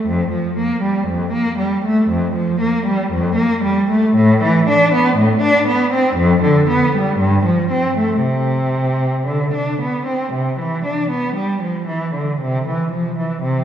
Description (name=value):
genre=classical, baroque-style suite movement for unaccompanied cello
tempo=58 BPM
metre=4/4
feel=uneven beats, rubato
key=F major, C major from 4.1 s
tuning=A4 = 440 Hz
part: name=rich cello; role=solo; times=0.0-13.6 s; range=F2 to D4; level=-15 LUFS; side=equal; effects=none
room=wet concert hall reverb, RT60 2.0 s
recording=heard from further back in the room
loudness=-15 LUFS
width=side -9 dB against mid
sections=0.0-12.4 A section; 12.4-13.6 B section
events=none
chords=none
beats=| 0.08 1.09 2.10 3.11 | 4.14 5.16 6.15 7.16 | 8.20 9.25 10.30 11.36 | 12.41 13.42